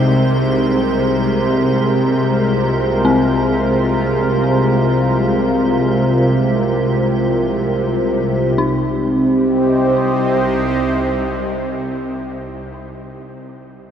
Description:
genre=dark ambient drone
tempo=free time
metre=none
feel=none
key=C minor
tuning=A4 = 440 Hz
part: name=sweeping resonant pad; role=sustained chords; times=0.0-13.0 s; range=C3 to Eb5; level=-16 LUFS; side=equal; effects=chorus
part: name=dark detuned synth bell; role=arpeggios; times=0.0-13.9 s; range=C4 to F4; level=-24 LUFS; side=left 4 dB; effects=none
part: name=bowed-like drone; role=drone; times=0.0-12.6 s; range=C2 to C3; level=-20 LUFS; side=right 1 dB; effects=built-in reverb
part: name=icy glass pad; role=texture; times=0.0-8.6 s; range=G4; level=-30 LUFS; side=equal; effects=chorus, built-in reverb
room=wet huge ambient reverb, RT60 7.8 s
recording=none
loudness=-14 LUFS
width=side -8 dB against mid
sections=0.0-8.6 A section; 8.6-12.3 B section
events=none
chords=0.0 Ab6/C; 8.6 Cm

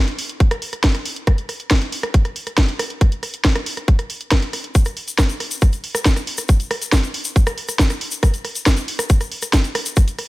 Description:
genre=trance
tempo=138 BPM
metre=4/4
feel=straight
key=none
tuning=none
part: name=drum and bass drum kit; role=drums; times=0.1-10.3 s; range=hi-hat, rim click, snare drum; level=-22 LUFS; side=right 1 dB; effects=small room ambience
part: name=electronic kick drum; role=drums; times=0.4-10.1 s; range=none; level=-15 LUFS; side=equal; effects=small room ambience
part: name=egg shaker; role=percussion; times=4.8-10.2 s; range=none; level=-27 LUFS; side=left 5 dB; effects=none
room=digital ambience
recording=none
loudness=-16 LUFS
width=side -19 dB against mid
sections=0.0-10.3 A section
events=none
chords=none

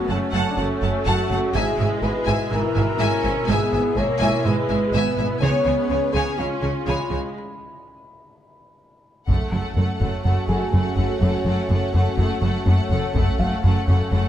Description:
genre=cinematic, hybrid orchestral and electronic film score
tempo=124 BPM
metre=4/4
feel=straight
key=F# minor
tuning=A4 = 440 Hz
part: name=rich symphonic viola section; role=accompaniment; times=0.0-14.3 s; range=E3 to C#4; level=-29 LUFS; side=right 3 dB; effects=none
part: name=phased analog pad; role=sustained chords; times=0.0-14.3 s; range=B2 to E5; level=-29 LUFS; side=equal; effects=phaser, chorus
part: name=warm French horn section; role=sustained chords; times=0.0-7.4 s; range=C#4 to C#5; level=-25 LUFS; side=left 3 dB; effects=none
part: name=felt-muted upright piano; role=texture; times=0.0-14.3 s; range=E4 to B5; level=-36 LUFS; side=left 1 dB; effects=tape echo
part: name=warm symphonic violin section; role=second line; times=0.1-14.3 s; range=A4 to A5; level=-29 LUFS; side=left 2 dB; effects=none
part: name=clear symphonic double bass section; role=bass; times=0.1-14.2 s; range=F#1 to C#2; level=-26 LUFS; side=right 2 dB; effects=none
part: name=rich symphonic cello section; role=bass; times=0.1-14.2 s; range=F#2 to C#3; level=-26 LUFS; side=right 2 dB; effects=none
part: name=warm symphonic violin section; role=melody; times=9.3-14.3 s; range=F#5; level=-32 LUFS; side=left 4 dB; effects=none
part: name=rubbery square bass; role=riff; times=9.3-14.3 s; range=F#2 to F#3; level=-21 LUFS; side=left 2 dB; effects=none
part: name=taiko ensemble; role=drums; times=9.3-10.2, 13.2-14.1 s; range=none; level=-26 LUFS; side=equal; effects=none
room=light reverb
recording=close, detailed microphones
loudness=-18 LUFS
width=side -11 dB against mid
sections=0.0-9.3 A section; 9.3-14.3 B section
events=break 7.3-9.3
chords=0.0 F#m; 1.5 E/G#; 5.4 C#; 9.3 F#m

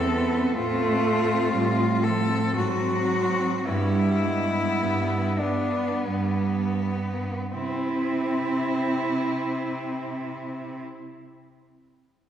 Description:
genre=classical, lyrical piece for cello ensemble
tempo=39-64 BPM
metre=3/4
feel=rubato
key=C major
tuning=A4 = 440 Hz
part: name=warm cello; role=melody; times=0.0-10.8 s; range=B3 to A4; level=-28 LUFS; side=left 3 dB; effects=none
part: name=rich cello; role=second line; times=0.0-10.8 s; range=F3 to E4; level=-28 LUFS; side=right 4 dB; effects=none
part: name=warm cello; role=accompaniment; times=0.0-10.8 s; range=B3 to C4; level=-31 LUFS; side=left 1 dB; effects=none
part: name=rich cello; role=bass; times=0.0-10.8 s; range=E2 to C3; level=-28 LUFS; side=right 1 dB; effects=none
room=wet concert hall reverb, RT60 2.2 s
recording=heard from further back in the room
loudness=-22 LUFS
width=side -10 dB against mid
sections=0.0-7.5 A section; 7.5-11.8 B section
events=slowing down 0.0-7.5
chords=0.0 C/E; 0.5 F/A; 2.6 Ab7; 3.6 G; 7.5 C

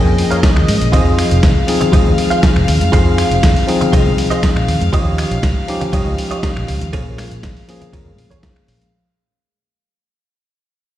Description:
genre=nu-disco, nu disco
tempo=120 BPM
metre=4/4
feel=straight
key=unclear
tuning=A4 = 440 Hz
part: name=bell-like tine electric piano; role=accompaniment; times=0.0-8.9 s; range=F3 to Ab4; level=-18 LUFS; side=left 2 dB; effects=ping-pong delay
part: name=rich chamber string section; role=sustained chords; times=0.0-8.9 s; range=Eb5 to F5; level=-25 LUFS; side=left 1 dB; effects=sidechain pumping
part: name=direct-recorded clean electric guitar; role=riff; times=0.0-8.7 s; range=F4 to G5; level=-23 LUFS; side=right 4 dB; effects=ensemble chorus, ping-pong delay
part: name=vintage muted fingered electric bass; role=bass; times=0.0-8.8 s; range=F1 to Bb2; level=-16 LUFS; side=equal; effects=none
part: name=dusty soul sampler-style drum kit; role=drums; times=0.2-8.9 s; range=finger snaps, hi-hat, ride cymbal, snare drum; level=-22 LUFS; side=equal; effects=none
part: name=electronic kick drum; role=drums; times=0.4-8.5 s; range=none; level=-14 LUFS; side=equal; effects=none
part: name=congas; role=percussion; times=1.8-8.9 s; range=none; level=-26 LUFS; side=left 1 dB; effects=none
room=light reverb, digital ambience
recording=played on a big sound system in a bare room, stone room reverb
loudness=-12 LUFS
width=side -12 dB against mid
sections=0.0-8.9 A section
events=drop 0.0-8.9; clean electric guitar fill 0.0-0.9; fade-out 3.6-8.9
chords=0.0 Bbm7; 0.9 Fm7; 4.9 Eb9; 6.9 Bbm7

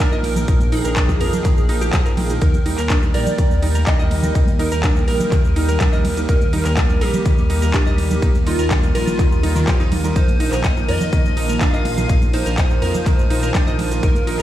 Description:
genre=progressive house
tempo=124 BPM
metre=4/4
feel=straight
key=Eb major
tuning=A4 = 442 Hz
part: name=plucky unison lead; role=melody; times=0.0-14.4 s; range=F4 to F5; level=-26 LUFS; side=equal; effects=ensemble chorus, sidechain pumping, ping-pong delay
part: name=lush unison pad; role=sustained chords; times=0.0-14.4 s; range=Eb3 to G5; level=-29 LUFS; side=left 1 dB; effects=chorus, sidechain pumping
part: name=glassy wavetable pluck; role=arpeggios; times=0.0-14.4 s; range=Eb3 to Eb5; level=-27 LUFS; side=equal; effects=chorus, sidechain pumping, ping-pong delay
part: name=warm concert grand piano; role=stabs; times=0.0-14.4 s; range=F3 to C5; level=-26 LUFS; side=right 4 dB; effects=sidechain pumping, ping-pong delay
part: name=big-room dance drum kit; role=drums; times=0.0-14.4 s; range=handclaps, hi-hat, ride cymbal, shaker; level=-28 LUFS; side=equal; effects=sidechain pumping on hats, sidechain pumping on cymbals, sidechain pumping on perc
part: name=electronic kick drum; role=drums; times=0.0-14.1 s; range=none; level=-17 LUFS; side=equal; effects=none
part: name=dark detuned saw bass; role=bass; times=0.1-14.4 s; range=Bb1 to F2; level=-21 LUFS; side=equal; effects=sidechain pumping
part: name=congas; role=percussion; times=0.2-14.2 s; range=none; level=-28 LUFS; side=right 2 dB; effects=sidechain pumping on perc
part: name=drifting glass-harmonics texture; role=texture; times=3.5-14.4 s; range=Eb7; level=-35 LUFS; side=left 5 dB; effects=chorus, built-in reverb, sidechain pumping
room=digital ambience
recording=played on a big sound system in a bare room, stone room reverb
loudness=-15 LUFS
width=side -13 dB against mid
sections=0.0-14.4 A section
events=none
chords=0.0 Bbsus4; 2.4 Eb; 10.2 Bbsus4

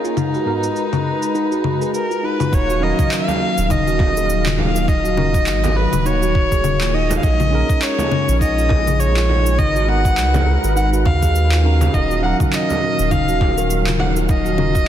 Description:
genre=organic downtempo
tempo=102 BPM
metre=4/4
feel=swing 57% on 16ths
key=Eb minor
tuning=A4 = 439 Hz
part: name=rich kamancheh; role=melody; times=0.0-14.9 s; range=Eb4 to Gb5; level=-21 LUFS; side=left 1 dB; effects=vintage 12-bit sampler grit, ping-pong delay
part: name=tine electric piano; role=accompaniment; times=0.0-14.8 s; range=Ab2 to F5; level=-27 LUFS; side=right 4 dB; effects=sidechain pumping, ping-pong delay
part: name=warm analog pad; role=sustained chords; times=0.0-14.9 s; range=Bb2 to F5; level=-26 LUFS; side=left 2 dB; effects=chorus, sidechain pumping
part: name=steel tongue drum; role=arpeggios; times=0.0-14.9 s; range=Eb4 to Bb4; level=-24 LUFS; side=right 2 dB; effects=ping-pong delay
part: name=electronic cabasa, congas and handclaps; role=drums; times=0.0-14.9 s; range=none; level=-24 LUFS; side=left 4 dB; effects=low-pass filter on perc, low-pass filter on snare
part: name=warm sub bass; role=bass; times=2.5-14.9 s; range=Eb1 to Eb2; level=-19 LUFS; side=equal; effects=sidechain pumping
part: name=electronic kick drum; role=drums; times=2.5-14.9 s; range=none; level=-18 LUFS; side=equal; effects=none
part: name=frame drum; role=percussion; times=3.3-14.1 s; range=none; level=-27 LUFS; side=right 3 dB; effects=none
room=light reverb, digital ambience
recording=dense, heavily limited modern master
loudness=-15 LUFS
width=side -10 dB against mid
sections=0.0-2.5 A section; 2.5-14.9 B section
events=filter sweep on steel tongue drum 0.0-2.5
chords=0.2 Abm9; 2.5 Ebm9; 7.2 Bbm7; 9.6 Abm9; 11.9 Ebm9

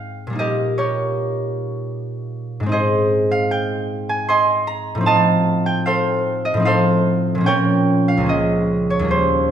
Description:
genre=classical, solo harp piece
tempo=76 BPM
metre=3/4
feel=rubato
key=Ab major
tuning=A4 = 443 Hz
part: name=concert harp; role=solo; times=0.0-9.5 s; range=Db2 to C6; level=-16 LUFS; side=right 1 dB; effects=none
room=moderate scoring stage reverb, RT60 1.5 s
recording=minimal, uncompressed stereo recording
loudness=-16 LUFS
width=side -9 dB against mid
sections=0.0-9.5 A section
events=none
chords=0.4 Eb7/Bb; 2.7 Ab; 5.1 F7/A; 7.5 Bbm; 8.3 Bbm/Db

